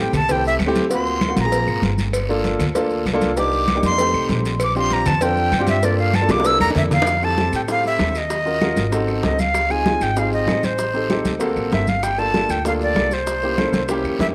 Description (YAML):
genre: Afro-Cuban jazz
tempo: 194 BPM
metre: 4/4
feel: straight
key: F major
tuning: A4 = 440 Hz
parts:
  - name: breathy bright jazz flute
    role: melody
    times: 0.0-14.3 s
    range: C5 to E6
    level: -23 LUFS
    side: equal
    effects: slapback echo
  - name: warm concert grand piano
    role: accompaniment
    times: 0.0-14.3 s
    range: A3 to Bb4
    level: -25 LUFS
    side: equal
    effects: none
  - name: upright bass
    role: bass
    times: 0.0-14.3 s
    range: G1 to A2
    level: -27 LUFS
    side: equal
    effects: none
  - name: claves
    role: percussion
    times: 0.1-14.2 s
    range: none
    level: -40 LUFS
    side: equal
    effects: none
  - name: congas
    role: percussion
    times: 0.1-14.3 s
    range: none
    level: -28 LUFS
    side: equal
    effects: none
  - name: cowbell and bongos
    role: percussion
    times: 0.1-14.3 s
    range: none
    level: -30 LUFS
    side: equal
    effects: none
  - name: guiro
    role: percussion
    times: 0.1-14.3 s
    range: none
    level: -37 LUFS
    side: equal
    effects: none
  - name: maracas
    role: percussion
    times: 0.1-14.3 s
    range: none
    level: -41 LUFS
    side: equal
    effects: none
room: moderate plate reverb, RT60 2.9 s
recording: none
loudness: -19 LUFS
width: mono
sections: 0.0-7.1 A section; 7.1-14.3 B section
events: flute solo 0.0-7.1; drum fill 6.3-7.1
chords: 0.0 Am7; 0.9 D7alt; 2.1 Gm9; 3.4 Cm9; 4.0 F9; 4.6 Bb69; 5.8 Gm9; 6.5 C13; 7.1 Fmaj9; 8.3 Ebm9; 8.9 Ab7b9; 9.6 Dbmaj9; 10.8 Am7b5; 11.4 D7b13; 12.0 Gm9; 13.3 C7b9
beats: 0.29 0.60 | 0.91 1.22 1.53 1.83 | 2.14 2.45 2.76 3.07 | 3.37 3.68 3.99 4.30 | 4.61 4.91 5.22 5.53 | 5.84 6.15 6.46 6.76 | 7.07 7.38 7.69 8.00 | 8.31 8.62 8.93 9.24 | 9.55 9.86 10.17 10.48 | 10.79 11.10 11.41 11.72 | 12.03 12.34 12.65 12.96 | 13.27 13.58 13.89 14.20